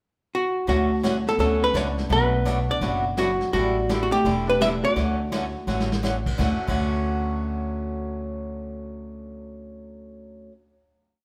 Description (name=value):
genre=country, western swing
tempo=168 BPM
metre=4/4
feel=swing 64% on 8ths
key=D major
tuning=A4 = 440 Hz
part: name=archtop guitar, miked and amplified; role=melody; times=0.3-6.0 s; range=F#4 to E5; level=-25 LUFS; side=equal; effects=none
part: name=Celtic harp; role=second line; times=0.7-7.4 s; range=F#3 to G4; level=-32 LUFS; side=equal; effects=none
part: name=picked swing-style acoustic guitar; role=accompaniment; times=0.7-10.5 s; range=B2 to A4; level=-33 LUFS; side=equal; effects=none
part: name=upright bass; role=bass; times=0.7-10.5 s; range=E1 to D2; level=-30 LUFS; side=equal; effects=none
part: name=vintage brush drum kit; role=drums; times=0.7-6.8 s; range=brushed snare drum, crash cymbal, hi-hat, kick drum, snare drum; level=-33 LUFS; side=equal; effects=none
room=moderate large studio reverb, RT60 1.3 s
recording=band playing live in one room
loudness=-24 LUFS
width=mono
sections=0.0-0.7 pickup bar; 0.7-6.4 A section; 6.4-9.2 final chord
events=drum fill 5.7-6.0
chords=0.0 N.C.; 0.7 Dmaj7; 2.1 Bm7; 3.5 A7sus4; 5.0 Dmaj7